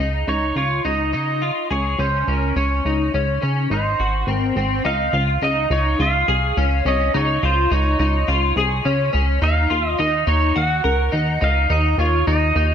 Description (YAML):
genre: dream pop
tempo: 105 BPM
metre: 4/4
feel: straight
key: Db major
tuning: A4 = 440 Hz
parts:
  - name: twelve-string electric guitar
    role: arpeggios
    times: 0.0-12.7 s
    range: C4 to Bb4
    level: -22 LUFS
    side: left 2 dB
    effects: ensemble chorus, ping-pong delay
  - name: plucky analog bass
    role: bass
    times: 0.0-12.7 s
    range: Ab1 to Db3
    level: -20 LUFS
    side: equal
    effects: none
  - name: pedal steel guitar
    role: melody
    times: 0.3-12.7 s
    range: Bb4 to Gb5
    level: -23 LUFS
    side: right 2 dB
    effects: ping-pong delay
room: light reverb, digital ambience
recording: none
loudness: -17 LUFS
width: side -8 dB against mid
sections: 0.0-4.8 A section; 4.8-12.7 B section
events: none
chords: 0.0 Dbadd9; 2.6 Dbsus2; 3.7 Ab7; 4.8 Dbadd9; 9.4 Ebm